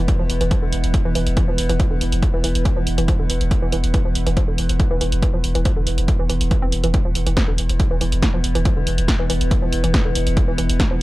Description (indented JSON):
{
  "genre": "driving peak-time techno",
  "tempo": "140 BPM",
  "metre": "4/4",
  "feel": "straight",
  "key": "unclear",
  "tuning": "A4 = 440 Hz",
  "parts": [
    { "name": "saturated sub bass", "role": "bass", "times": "0.0-11.0 s", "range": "E1", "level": "-21 LUFS", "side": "equal", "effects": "overdrive, sidechain pumping, low-pass filter" },
    { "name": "metallic inharmonic drone", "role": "drone", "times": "0.0-11.0 s", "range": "E3 to B3", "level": "-26 LUFS", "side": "right 1 dB", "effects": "chorus, built-in reverb, sidechain pumping" },
    { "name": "woody wave-folded pluck", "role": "riff", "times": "0.1-10.9 s", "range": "D3 to C4", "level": "-27 LUFS", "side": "right 1 dB", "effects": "chorus, tube saturation, sidechain pumping, tape echo" },
    { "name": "electronic kick drum", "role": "drums", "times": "0.1-10.9 s", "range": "none", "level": "-19 LUFS", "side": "equal", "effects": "none" },
    { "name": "punchy analog drum machine", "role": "drums", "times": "0.1-10.9 s", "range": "hi-hat, snare drum", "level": "-26 LUFS", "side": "right 1 dB", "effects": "none" }
  ],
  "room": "digital ambience",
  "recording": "dry, gritty hardware recording",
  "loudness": "-16 LUFS",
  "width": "side -18 dB against mid",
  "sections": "0.0-11.0 A section",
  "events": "none",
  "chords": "0.0 E5"
}